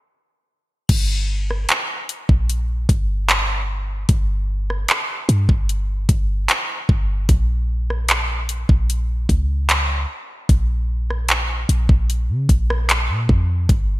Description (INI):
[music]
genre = contemporary R&B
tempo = 75 BPM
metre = 4/4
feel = straight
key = unclear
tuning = A4 = 440 Hz
[part]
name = clean 808-style bass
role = bass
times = 0.9-14.0 s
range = G1 to Db3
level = -19 LUFS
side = equal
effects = none
[part]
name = trap drum kit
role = drums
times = 0.9-13.9 s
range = crash cymbal, handclaps, hi-hat, kick drum, rim click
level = -18 LUFS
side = equal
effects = gated reverb
[sound]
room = digital ambience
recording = bright 1980s-style digital production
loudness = -17 LUFS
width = side -17 dB against mid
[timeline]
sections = 0.9-14.0 A section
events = break 0.0-0.9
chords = none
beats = 0.09 | 0.89 1.69 2.49 3.29 | 4.09 4.89 5.69 6.49 | 7.29 8.09 8.89 9.69 | 10.49 11.29 12.09 12.89 | 13.69